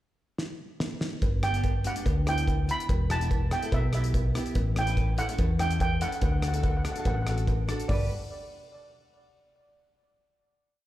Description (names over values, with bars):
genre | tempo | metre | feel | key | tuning
calypso | 144 BPM | 4/4 | straight | G major | A4 = 439 Hz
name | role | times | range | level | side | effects
damped 70s drum kit | drums | 0.4-8.0 s | hi-hat, kick drum, rim click, snare drum, toms | -30 LUFS | equal | none
hollow-body short-scale fingered electric bass | bass | 1.2-8.1 s | E1 to E2 | -27 LUFS | equal | none
cowbell | percussion | 1.2-8.1 s | none | -41 LUFS | right 2 dB | slapback echo
steel pan | melody | 1.4-8.1 s | D5 to B5 | -33 LUFS | right 2 dB | slapback echo, digital delay
nylon-string guitar | accompaniment | 1.4-8.1 s | B3 to B4 | -37 LUFS | equal | double-tracked left and right, slapback echo
room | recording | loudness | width
light reverb, small room ambience | live gig heard through the venue's PA, club reverb | -25 LUFS | side -14 dB against mid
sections
0.0-1.2 pickup bar; 1.2-7.9 verse; 7.9-9.6 final chord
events
drum fill 0.4-1.2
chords
0.0 N.C.; 1.2 G; 2.9 Em; 4.6 A7; 6.2 D; 7.9 G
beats
0.38 0.80 | 1.22 1.64 2.05 2.47 | 2.89 3.30 3.72 4.14 | 4.55 4.97 5.39 5.80 | 6.22 6.64 7.05 7.47 | 7.89